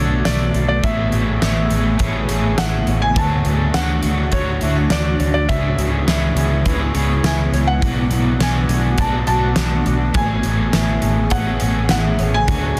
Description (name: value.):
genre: dream pop.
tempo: 103 BPM.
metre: 4/4.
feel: straight.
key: unclear.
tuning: A4 = 440 Hz.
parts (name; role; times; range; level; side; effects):
felt-muted upright piano; melody; 0.0-12.8 s; C#5 to A5; -27 LUFS; equal; digital delay.
crunchy overdriven guitar; accompaniment; 0.0-12.8 s; B2 to D5; -27 LUFS; equal; harmonic tremolo, analog chorus.
granular cloud pad; sustained chords; 0.0-12.8 s; C#3 to G#4; -27 LUFS; equal; built-in reverb.
electric guitar at the edge of break-up; arpeggios; 0.0-12.8 s; B2 to D5; -27 LUFS; equal; subtle chorus, digital delay.
vintage muted fingered electric bass; bass; 0.0-12.8 s; A1 to D2; -22 LUFS; equal; none.
huge arena drum kit; drums; 0.3-12.8 s; hi-hat, kick drum, snare drum, tambourine; -24 LUFS; equal; none.
room: light reverb, studio reverb.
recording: dense, heavily limited modern master.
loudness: -18 LUFS.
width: mono.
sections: 0.0-12.8 A section.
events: none.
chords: 0.0 Bm7; 0.8 Amaj9; 3.2 Dmaj7; 5.5 C#m7; 7.8 Bm7; 10.2 Amaj9.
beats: 0.25 | 0.83 1.42 2.00 2.58 | 3.16 3.75 4.33 4.91 | 5.49 6.08 6.66 7.24 | 7.82 8.41 8.99 9.57 | 10.15 10.74 11.32 11.90 | 12.48.